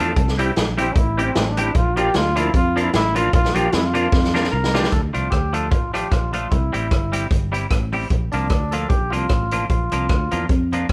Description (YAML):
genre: ska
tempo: 151 BPM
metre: 4/4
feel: swing 56% on 8ths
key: unclear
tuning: A4 = 440 Hz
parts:
  - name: brilliant trombone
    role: melody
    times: 0.0-4.5 s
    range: C4 to A4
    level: -25 LUFS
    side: equal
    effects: none
  - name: semi-hollow electric guitar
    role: accompaniment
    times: 0.0-10.9 s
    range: F3 to G4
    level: -28 LUFS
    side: equal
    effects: none
  - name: percussive tonewheel organ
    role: stabs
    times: 0.0-4.9 s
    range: C4 to Bb4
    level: -28 LUFS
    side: equal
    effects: chorus vibrato, fast rotary speaker
  - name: fingered electric bass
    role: bass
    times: 0.0-10.9 s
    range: G1 to F2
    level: -26 LUFS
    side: equal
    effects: none
  - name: swinging big-band drum kit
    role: drums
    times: 0.2-10.9 s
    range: hi-hat, kick drum, rim click, snare drum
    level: -23 LUFS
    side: equal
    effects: none
  - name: percussive tonewheel organ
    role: melody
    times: 4.5-10.5 s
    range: D4 to Bb4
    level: -28 LUFS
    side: equal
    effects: overdrive
room: moderate large studio reverb, RT60 0.8 s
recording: band playing live in one room, vinyl crackle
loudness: -20 LUFS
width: mono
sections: 0.0-4.9 A section; 4.9-10.9 B section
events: trombone solo 0.0-4.9; drum fill 4.1-4.9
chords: 0.2 C; 1.8 Bb; 6.5 C; 8.1 Bb